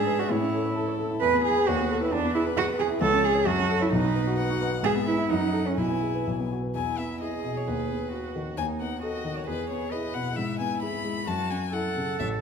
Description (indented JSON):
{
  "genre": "quick classical-period movement for piano trio",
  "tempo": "132 BPM",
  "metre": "2/4",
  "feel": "rubato",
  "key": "E major from 3.0 s",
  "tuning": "A4 = 440 Hz",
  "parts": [
    { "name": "warm violin", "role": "melody", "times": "0.0-12.3 s", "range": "G#4 to B5", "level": "-34 LUFS", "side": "left 8 dB", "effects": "none" },
    { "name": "warm cello", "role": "second line", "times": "0.0-12.4 s", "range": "C#4 to B4", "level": "-27 LUFS", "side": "right 4 dB", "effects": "none" },
    { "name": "dark grand piano", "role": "accompaniment", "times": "0.0-12.4 s", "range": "A1 to D5", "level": "-28 LUFS", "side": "left 1 dB", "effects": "none" }
  ],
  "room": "wet recital hall reverb, RT60 1.8 s",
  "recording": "none",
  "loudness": "-24 LUFS",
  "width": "side -6 dB against mid",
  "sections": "0.0-6.8 A section; 6.8-12.4 B section",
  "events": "none",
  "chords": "0.3 A; 1.2 E; 1.7 B7/D#; 2.1 E; 3.0 C#5; 3.5 F#m; 3.9 B; 4.8 E/G#; 5.3 F#m; 5.8 E/B; 6.3 B5; 6.8 E; 7.7 B/D#; 8.6 B7/D#; 9.5 E; 10.4 E/G#; 11.3 F#m7",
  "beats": "| 0.30 0.76 | 1.22 1.67 | 2.12 2.57 | 3.02 3.47 | 3.93 4.38 | 4.84 5.30 | 5.78 6.27 | 6.75 7.22 | 7.68 8.13 | 8.58 9.03 | 9.48 9.92 | 10.37 10.82 | 11.28 11.73 | 12.19"
}